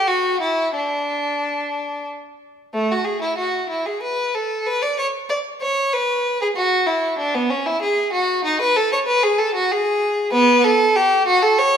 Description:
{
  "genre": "classical, baroque-style suite movement for unaccompanied violin",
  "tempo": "95 BPM",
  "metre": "3/4",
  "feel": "rubato",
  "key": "unclear",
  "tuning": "A4 = 435 Hz",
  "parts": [
    { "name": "clear violin", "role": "solo", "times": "0.0-11.8 s", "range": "A3 to D5", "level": "-17 LUFS", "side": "equal", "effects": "none" }
  ],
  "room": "moderate scoring stage reverb, RT60 1.8 s",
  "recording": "minimal, uncompressed stereo recording",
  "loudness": "-17 LUFS",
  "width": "side -8 dB against mid",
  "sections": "0.0-2.8 A section; 2.8-11.8 A section",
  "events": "none",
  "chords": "none"
}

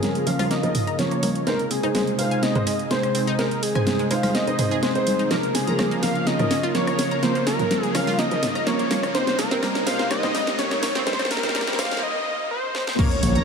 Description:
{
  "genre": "progressive house",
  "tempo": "125 BPM",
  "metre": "4/4",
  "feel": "straight",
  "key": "unclear",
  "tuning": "A4 = 440 Hz",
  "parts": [
    { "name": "wide unison lead", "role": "melody", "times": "0.0-13.4 s", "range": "Ab4 to F5", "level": "-25 LUFS", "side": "left 1 dB", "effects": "sidechain pumping, tape echo" },
    { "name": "airy breathy pad", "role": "sustained chords", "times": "0.0-13.4 s", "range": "C3 to Bb4", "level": "-30 LUFS", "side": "equal", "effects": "chorus, sidechain pumping" },
    { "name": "dark concert grand piano", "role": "stabs", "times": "0.0-13.4 s", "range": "F3 to Eb5", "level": "-27 LUFS", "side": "right 2 dB", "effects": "sidechain pumping, low-pass filter, dub echo" },
    { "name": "house drum kit", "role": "drums", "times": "0.0-13.4 s", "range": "crash cymbal, hi-hat, ride cymbal, rim click, snare drum", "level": "-27 LUFS", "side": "equal", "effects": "sidechain pumping on hats, sidechain pumping on cymbals" },
    { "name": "deep house drum kit", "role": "percussion", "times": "0.0-12.0 s", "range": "congas, rim click, toms", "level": "-29 LUFS", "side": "right 1 dB", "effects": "sidechain pumping on snare, sidechain pumping on perc, sidechain pumping on toms" },
    { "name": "riser and impact", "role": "sound effects", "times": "2.9-13.4 s", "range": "none", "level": "-33 LUFS", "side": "equal", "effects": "none" },
    { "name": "analog pluck", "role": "arpeggios", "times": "0.3-13.4 s", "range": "G3 to Bb6", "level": "-30 LUFS", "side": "right 1 dB", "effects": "chorus, sidechain pumping, dub echo" },
    { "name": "electronic kick drum", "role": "drums", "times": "13.0-13.1 s", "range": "none", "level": "-20 LUFS", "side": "equal", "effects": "none" },
    { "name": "fat analog bass", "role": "bass", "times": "13.2-13.4 s", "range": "Bb1", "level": "-20 LUFS", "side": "equal", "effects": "sidechain pumping" }
  ],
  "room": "moderate huge ambient reverb, RT60 6.7 s",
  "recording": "high-pass filter",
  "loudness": "-20 LUFS",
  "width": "side -6 dB against mid",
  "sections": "0.0-13.0 A section",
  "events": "build-up 0.0-13.0; drum fill 0.0-12.0, 12.7; filter sweep on grand piano 0.0-13.0; filter sweep 0.0-13.0; riser 2.9-12.0; break 12.0-13.0; impact 13.0-13.4",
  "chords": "0.0 Bbm; 1.5 Ab; 5.3 Bbm; 9.1 Cm7"
}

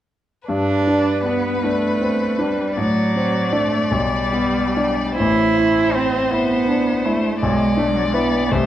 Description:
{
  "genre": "classical, slow romantic movement for piano trio",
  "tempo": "46-55 BPM (dotted quarters)",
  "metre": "6/8",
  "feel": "rubato",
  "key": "G major",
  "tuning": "A4 = 440 Hz",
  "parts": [
    { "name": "rich violin", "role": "melody", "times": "0.5-8.7 s", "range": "B4 to D5", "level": "-24 LUFS", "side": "left 4 dB", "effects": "none" },
    { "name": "rich cello", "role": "second line", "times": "0.5-8.7 s", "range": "F#3 to E4", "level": "-20 LUFS", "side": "right 3 dB", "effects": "none" },
    { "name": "clear grand piano", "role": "accompaniment", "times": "0.5-8.7 s", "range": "A1 to D5", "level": "-20 LUFS", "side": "left 1 dB", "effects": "none" }
  ],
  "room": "wet scoring stage reverb, RT60 1.5 s",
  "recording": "worn, warbling old tape, cassette tape, warbly pitch drift",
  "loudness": "-16 LUFS",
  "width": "side -12 dB against mid",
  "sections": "0.5-8.7 A section",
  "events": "none",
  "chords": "0.5 G; 2.8 D7/A; 3.9 G/B; 5.2 Am; 7.4 E5/B"
}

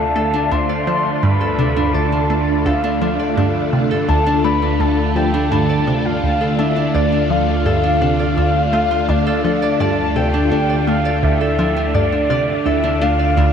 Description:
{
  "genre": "ambient, sequencer-driven space music",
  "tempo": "84 BPM",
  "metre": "4/4",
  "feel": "straight",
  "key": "D minor",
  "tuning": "A4 = 440 Hz",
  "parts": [
    { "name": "soft octave-layered synth lead", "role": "melody", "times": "0.0-13.5 s", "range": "D5 to C6", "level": "-20 LUFS", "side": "left 2 dB", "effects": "chorus, phaser, tape echo" },
    { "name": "phased string machine", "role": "sustained chords", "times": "0.0-13.5 s", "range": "D3 to F4", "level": "-20 LUFS", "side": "equal", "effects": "ensemble chorus, phaser" },
    { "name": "Celtic harp", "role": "arpeggios", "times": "0.0-13.5 s", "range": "D4 to D5", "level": "-23 LUFS", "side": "equal", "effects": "auto-pan, tape echo" },
    { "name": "resonant blip pluck", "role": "riff", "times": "0.0-13.5 s", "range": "D2 to A3", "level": "-21 LUFS", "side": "right 1 dB", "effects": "phaser, tape echo" },
    { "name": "fat analog bass", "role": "bass", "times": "0.0-13.5 s", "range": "D2", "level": "-23 LUFS", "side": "right 1 dB", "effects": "none" }
  ],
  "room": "wet huge ambient reverb, RT60 8.2 s",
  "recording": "none",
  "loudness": "-14 LUFS",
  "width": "side -7 dB against mid",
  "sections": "0.0-13.5 A section",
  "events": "none",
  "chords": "0.0 Dm"
}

